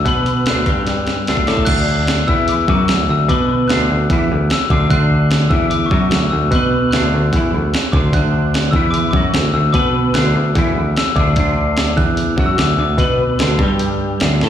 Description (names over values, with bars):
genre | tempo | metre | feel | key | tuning
indie rock | 148 BPM | 4/4 | straight | D major | A4 = 443 Hz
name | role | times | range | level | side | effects
glockenspiel with hard plastic mallets | melody | 0.0-13.6 s | C#6 to F#6 | -21 LUFS | left 4 dB | slapback echo
twelve-string electric guitar | riff | 0.0-14.5 s | D3 to B3 | -19 LUFS | equal | ensemble chorus, slapback echo
picked electric bass | bass | 0.0-14.5 s | D2 to B2 | -17 LUFS | right 1 dB | none
crisp 8-bit digital drum machine | drums | 0.1-14.5 s | crash cymbal, hi-hat, kick drum, snare drum | -18 LUFS | right 1 dB | none
room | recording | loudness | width
little or no reverb | live gig heard through the venue's PA, recital hall reverb | -13 LUFS | side -10 dB against mid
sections
0.0-1.7 A section; 1.7-14.5 B section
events
drum fill 0.9-1.7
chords
0.0 D